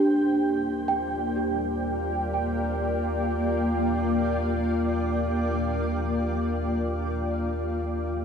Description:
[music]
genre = ambient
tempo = free time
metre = none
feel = none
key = Eb major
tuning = A4 = 440 Hz
[part]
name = granular cloud pad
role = sustained chords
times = 0.0-8.2 s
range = Bb3 to G5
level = -26 LUFS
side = left 1 dB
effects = built-in reverb
[part]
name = small celesta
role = arpeggios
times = 0.0-8.2 s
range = D4 to G5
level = -27 LUFS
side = right 2 dB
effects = tape echo
[part]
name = round analog bass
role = bass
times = 0.0-8.2 s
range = Eb2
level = -31 LUFS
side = equal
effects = none
[sound]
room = wet cathedral reverb, RT60 6.4 s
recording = in a vast, echoing space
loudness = -24 LUFS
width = side -7 dB against mid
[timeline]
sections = 0.0-8.2 A section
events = fade-out 4.1-8.2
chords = 0.0 Ebmaj7

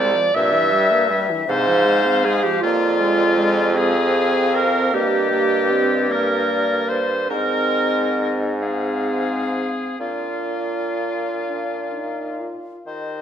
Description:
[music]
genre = classical, slow romantic movement for wind quintet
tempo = 40-54 BPM (dotted quarters)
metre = 6/8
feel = rubato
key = unclear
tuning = A4 = 435 Hz
[part]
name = silver concert flute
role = melody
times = 0.0-13.2 s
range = D5 to F5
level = -26 LUFS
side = left 8 dB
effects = none
[part]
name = bright oboe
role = second line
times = 0.0-13.2 s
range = F4 to E5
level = -25 LUFS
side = left 4 dB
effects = none
[part]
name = clear French horn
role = accompaniment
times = 0.0-12.9 s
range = Bb2 to F4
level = -27 LUFS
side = left 1 dB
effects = none
[part]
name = mellow clarinet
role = accompaniment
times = 0.0-13.2 s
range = F4 to E5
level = -22 LUFS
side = right 5 dB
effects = none
[part]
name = clear bassoon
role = bass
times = 0.0-13.2 s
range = C2 to Eb3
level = -23 LUFS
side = right 1 dB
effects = none
[sound]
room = wet recital hall reverb, RT60 1.6 s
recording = none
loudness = -17 LUFS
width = side -9 dB against mid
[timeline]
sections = 0.0-12.9 A section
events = none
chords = 0.3 Edim/G; 1.5 Fm/Ab; 2.6 Bb7/F; 4.9 Eb/G; 7.3 Ab; 8.6 Fm/Ab; 10.0 Bb

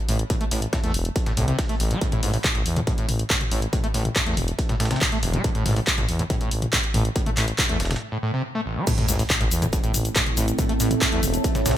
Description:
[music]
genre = driving peak-time techno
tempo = 140 BPM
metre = 4/4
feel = straight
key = A minor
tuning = A4 = 439 Hz
[part]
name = screaming distorted acid line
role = riff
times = 0.1-11.7 s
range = A1 to A3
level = -28 LUFS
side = equal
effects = distortion, lush chorus, sidechain pumping, digital delay
[part]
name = growling FM bass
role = bass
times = 0.1-11.8 s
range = E1 to E2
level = -25 LUFS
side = equal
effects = sidechain pumping
[part]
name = dusty soul sampler-style drum kit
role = drums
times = 0.1-11.8 s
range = hi-hat, snare drum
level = -35 LUFS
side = right 1 dB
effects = none
[part]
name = punchy analog drum machine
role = drums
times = 0.1-11.7 s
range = crash cymbal, handclaps, hi-hat, shaker, toms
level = -25 LUFS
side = left 1 dB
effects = sidechain pumping on hats, sidechain pumping on toms, sidechain pumping on cymbals, sidechain pumping on perc
[part]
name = electronic kick drum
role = drums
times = 0.3-11.5 s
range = none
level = -25 LUFS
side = equal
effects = distortion
[part]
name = overtone-sweeping drone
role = drone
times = 9.6-11.8 s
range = A2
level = -31 LUFS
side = equal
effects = chorus, built-in reverb, phaser, sidechain pumping
[part]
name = sub drop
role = sound effects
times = 8.9-10.6 s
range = none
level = -32 LUFS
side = equal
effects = none
[part]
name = deep dark ambient pad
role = texture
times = 10.0-11.8 s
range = C4 to A5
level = -28 LUFS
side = right 5 dB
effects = chorus, built-in reverb, sidechain pumping
[sound]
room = light reverb, digital ambience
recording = bright 1980s-style digital production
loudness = -20 LUFS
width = side -12 dB against mid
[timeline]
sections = 0.0-8.9 A section; 8.9-11.8 B section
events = break 8.0-8.9; drop 8.9-11.8; impact 8.9-10.6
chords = 0.0 A5; 8.9 Am

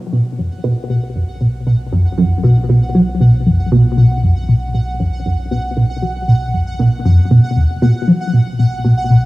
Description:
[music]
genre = ambient, sequencer-driven space music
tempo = 117 BPM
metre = 4/4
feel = straight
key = unclear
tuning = A4 = 439 Hz
[part]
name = round analog bass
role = bass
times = 0.0-9.3 s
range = B1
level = -25 LUFS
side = equal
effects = none
[part]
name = pulsing gated texture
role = texture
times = 0.6-9.3 s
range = F#5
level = -27 LUFS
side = right 2 dB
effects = chorus, built-in reverb, cassette tape
[part]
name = resonant blip pluck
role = riff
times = 0.1-9.2 s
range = E2 to F#3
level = -12 LUFS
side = equal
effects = phaser, analog chorus, cassette tape, ping-pong delay
[sound]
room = moderate spring reverb, RT60 2.4 s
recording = home recording on cassette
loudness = -12 LUFS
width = side -18 dB against mid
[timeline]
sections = 0.0-9.3 A section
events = fade-in on synth texture 0.0-9.3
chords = 0.0 B5

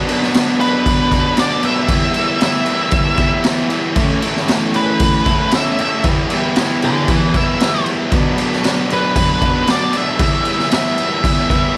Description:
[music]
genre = garage rock duo or trio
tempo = 116 BPM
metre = 4/4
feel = straight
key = E minor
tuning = A4 = 440 Hz
[part]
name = overdriven electric guitar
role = riff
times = 0.0-11.8 s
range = A2 to E4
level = -20 LUFS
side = equal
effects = none
[part]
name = raw garage drum kit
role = drums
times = 0.1-11.6 s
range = crash cymbal, kick drum, snare drum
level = -20 LUFS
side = equal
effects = none
[part]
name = octave-fuzz lead guitar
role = melody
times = 0.6-11.7 s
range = A4 to E5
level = -21 LUFS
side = equal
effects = distortion
[sound]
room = small room ambience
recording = lossy compression artefacts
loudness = -16 LUFS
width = mono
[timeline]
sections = 0.0-11.8 A section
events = none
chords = 0.0 Bm; 1.9 Em; 4.0 A; 6.0 Em; 8.1 Bm; 10.2 Em

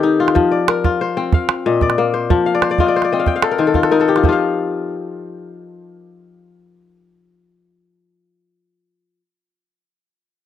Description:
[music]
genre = west african traditional, West African string and xylophone music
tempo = 124 BPM (dotted quarters)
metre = 12/8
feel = straight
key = F mixolydian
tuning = A4 = 445 Hz
[part]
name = kora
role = arpeggios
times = 0.0-9.3 s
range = Bb2 to G5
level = -15 LUFS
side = left 5 dB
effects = none
[part]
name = calabash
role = percussion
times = 0.3-4.4 s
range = none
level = -17 LUFS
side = right 4 dB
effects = none
[sound]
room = small room ambience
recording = dry, close 1970s-style studio recording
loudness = -14 LUFS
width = side -10 dB against mid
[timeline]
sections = 0.0-4.2 A section; 4.2-8.1 B section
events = kora fill 2.5-4.2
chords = 0.4 F5; 1.3 Bb; 2.3 F5; 3.3 N.C.

